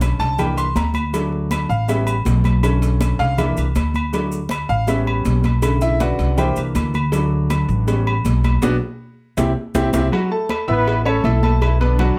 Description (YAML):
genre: latin, salsa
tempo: 160 BPM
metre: 4/4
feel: straight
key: unclear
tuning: A4 = 440 Hz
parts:
  - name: clear baby grand piano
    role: accompaniment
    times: 0.0-12.1 s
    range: C#3 to E6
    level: -24 LUFS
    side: equal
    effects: none
  - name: upright bass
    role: bass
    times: 0.0-12.1 s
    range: A1 to D2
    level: -21 LUFS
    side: equal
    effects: none
  - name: agogo bells and timbales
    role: percussion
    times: 0.0-12.2 s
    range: none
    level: -30 LUFS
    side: equal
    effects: none
  - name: congas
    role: percussion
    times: 0.0-12.2 s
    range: none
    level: -28 LUFS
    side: equal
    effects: none
  - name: cowbell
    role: percussion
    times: 0.0-12.2 s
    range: none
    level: -33 LUFS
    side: equal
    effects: none
  - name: maracas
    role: percussion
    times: 0.0-10.0 s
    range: none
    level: -41 LUFS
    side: equal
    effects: none
  - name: clear trombone section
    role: melody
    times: 10.7-12.2 s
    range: D3 to B4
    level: -24 LUFS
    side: equal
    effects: none
room: light reverb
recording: close, detailed microphones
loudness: -19 LUFS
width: mono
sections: 0.0-10.1 A section; 10.1-12.2 B section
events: grand piano solo 0.0-10.1; drum fill 8.6-10.1; band accent 8.6-10.1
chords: 0.4 C7; 1.1 D; 1.9 A7; 2.6 Bm7; 3.4 C7; 4.1 D; 4.9 A7; 5.6 Bm7; 6.4 C7; 7.1 D; 7.9 A7; 8.6 Bm; 9.4 C; 10.1 B7sus4; 10.9 A; 11.6 Bm7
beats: 0.02 0.39 0.77 | 1.14 1.51 1.89 2.26 | 2.64 3.01 3.38 3.76 | 4.13 4.51 4.88 5.26 | 5.63 6.01 6.38 6.75 | 7.13 7.50 7.88 8.25 | 8.63 9.00 9.38 9.75 | 10.12 10.50 10.87 11.25 | 11.62 11.99